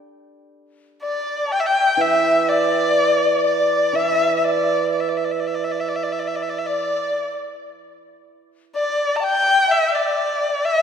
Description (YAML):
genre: chinese traditional, Chinese chamber ensemble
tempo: 62 BPM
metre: 4/4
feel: rubato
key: unclear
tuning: A4 = 440 Hz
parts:
  - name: hammered dulcimer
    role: accompaniment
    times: 0.0-6.8 s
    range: E3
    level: -24 LUFS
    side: right 9 dB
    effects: none
  - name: warm erhu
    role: melody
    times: 1.0-10.8 s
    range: D5 to A5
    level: -19 LUFS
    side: equal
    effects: none
  - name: mellow large dizi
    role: second line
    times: 1.0-10.8 s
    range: D5 to A5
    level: -22 LUFS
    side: left 5 dB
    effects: none
room: wet concert hall reverb, RT60 2.4 s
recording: recorded in a church or concert hall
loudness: -17 LUFS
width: side -7 dB against mid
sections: 0.0-10.8 A section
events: none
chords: none